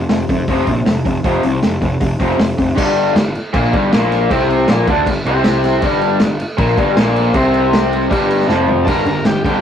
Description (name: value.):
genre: garage rock duo or trio.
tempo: 157 BPM.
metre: 4/4.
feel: straight.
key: G minor.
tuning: A4 = 441 Hz.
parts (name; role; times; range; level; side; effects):
raw garage guitar; riff; 0.0-9.6 s; F2 to D4; -15 LUFS; left 1 dB; overdrive.
fuzz picked electric bass; bass; 0.0-9.6 s; F1 to F2; -19 LUFS; equal; overdrive, tube saturation.
vintage drum kit; drums; 0.1-9.5 s; crash cymbal, hi-hat, kick drum, snare drum, toms; -18 LUFS; equal; none.
overdriven combo organ; melody; 8.8-9.6 s; G4 to Bb4; -20 LUFS; left 2 dB; none.
room: moderate studio reverb, RT60 0.6 s.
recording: rough rehearsal-room recording.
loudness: -12 LUFS.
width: side -9 dB against mid.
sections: 0.0-2.8 A section; 2.8-8.9 B section.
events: drum fill 8.5-8.9.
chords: 0.0 F5; 2.8 Gm.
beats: 0.10 0.48 0.86 | 1.25 1.63 2.01 2.39 | 2.77 3.16 3.54 3.92 | 4.30 4.68 5.06 5.44 | 5.82 6.20 6.58 6.96 | 7.34 7.72 8.10 8.49 | 8.87 9.25.